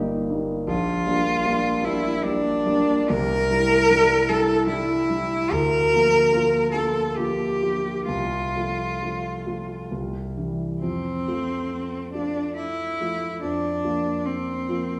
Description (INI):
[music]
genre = classical, romantic duo for cello and grand piano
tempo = 63-79 BPM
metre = 3/4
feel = rubato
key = F major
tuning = A4 = 440 Hz
[part]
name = warm concert grand piano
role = accompaniment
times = 0.0-15.0 s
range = G1 to G4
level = -28 LUFS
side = equal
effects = none
[part]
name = rich cello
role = melody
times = 0.7-15.0 s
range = C4 to Bb4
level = -24 LUFS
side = equal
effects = none
[sound]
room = wet recital hall reverb, RT60 1.5 s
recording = heard from further back in the room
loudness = -23 LUFS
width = mono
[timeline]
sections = 0.0-10.8 A section; 10.8-15.0 B section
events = none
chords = 0.0 Eb/G; 0.7 Gm7/Bb; 3.1 C; 5.5 Bb/D; 8.1 F/C; 9.9 C; 10.8 F; 13.4 Bb/F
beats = | 0.68 1.45 2.23 | 3.10 3.90 4.66 | 5.51 6.32 7.16 | 8.07 9.00 9.90 | 10.80 11.69 12.55 | 13.41 14.24